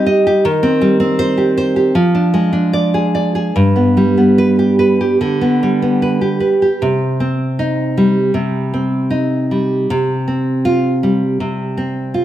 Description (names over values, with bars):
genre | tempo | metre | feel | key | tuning
romantic piece for solo classical guitar | 76 BPM | 4/4 | uneven beats, rubato | C minor | A4 = 441 Hz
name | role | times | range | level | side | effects
nylon-string guitar | solo | 0.0-12.2 s | G2 to Eb5 | -12 LUFS | equal | none
room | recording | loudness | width
moderate recital hall reverb, RT60 1.6 s | none | -12 LUFS | side -12 dB against mid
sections
0.0-6.8 A section; 6.8-12.2 B section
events
none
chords
0.4 Cm/Eb; 2.0 Ddim/F; 3.5 G; 6.8 Cm; 9.9 Csus4